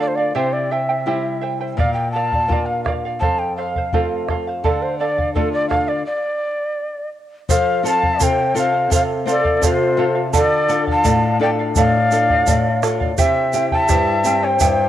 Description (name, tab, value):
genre	andean folk, Andean ensemble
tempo	84 BPM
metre	2/4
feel	straight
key	unclear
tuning	A4 = 445 Hz
part	breathy mellow quena	melody	0.0-14.9 s	A4 to A5	-20 LUFS	equal	cassette tape
part	charango	accompaniment	0.0-14.9 s	E4 to G5	-22 LUFS	right 7 dB	cassette tape
part	nylon-string guitar	accompaniment	0.0-14.9 s	F2 to A4	-22 LUFS	left 4 dB	cassette tape
part	bombo	percussion	1.8-14.8 s	none	-21 LUFS	left 1 dB	none
part	large quena	second line	7.5-14.9 s	F4 to F5	-22 LUFS	left 5 dB	cassette tape
part	egg shaker	percussion	7.5-14.8 s	none	-27 LUFS	right 8 dB	none
room	light reverb, small room reverb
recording	home recording on cassette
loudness	-16 LUFS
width	side -12 dB against mid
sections	0.0-7.5 A section; 7.5-14.9 B section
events	stop 6.1-7.5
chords	0.4 C; 1.8 Bb; 3.2 F; 4.6 Dm; 6.1 N.C.; 7.5 F; 10.3 Dm; 13.2 C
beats	| 0.35 1.07 | 1.78 2.50 | 3.21 3.93 | 4.64 5.36 | 6.07 6.78 | 7.49 8.20 | 8.91 9.62 | 10.34 11.04 | 11.76 12.46 | 13.18 13.88 | 14.59